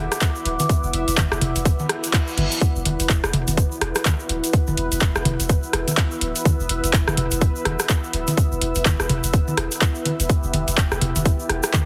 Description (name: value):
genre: minimal techno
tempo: 125 BPM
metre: 4/4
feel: swing 59% on 16ths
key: E minor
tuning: A4 = 440 Hz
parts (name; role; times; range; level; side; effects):
- punchy sub bass; bass; 0.0-11.6 s; D1 to G1; -29 LUFS; equal; sidechain pumping
- bubbling stepped-filter texture; texture; 0.0-11.9 s; B3 to E5; -36 LUFS; equal; chorus, built-in reverb, sidechain pumping
- deep dark ambient pad; texture; 0.0-11.9 s; E4 to A6; -31 LUFS; equal; chorus, built-in reverb, sidechain pumping
- booming analog drum machine; drums; 0.1-11.8 s; handclaps, hi-hat; -28 LUFS; equal; none
- garage drum kit; percussion; 0.1-11.8 s; congas, rim click, toms; -27 LUFS; equal; digital delay
- tube shaker; percussion; 0.1-11.9 s; none; -33 LUFS; equal; none
- electronic kick drum; drums; 0.2-11.8 s; none; -21 LUFS; equal; none
- reverse cymbal; sound effects; 2.1-2.6 s; none; -32 LUFS; equal; none
room: light reverb, digital ambience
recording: heavily compressed radio sound, multiband compression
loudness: -21 LUFS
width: mono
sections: 0.0-11.9 A section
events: reverse cymbal 2.1-2.6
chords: 0.0 E5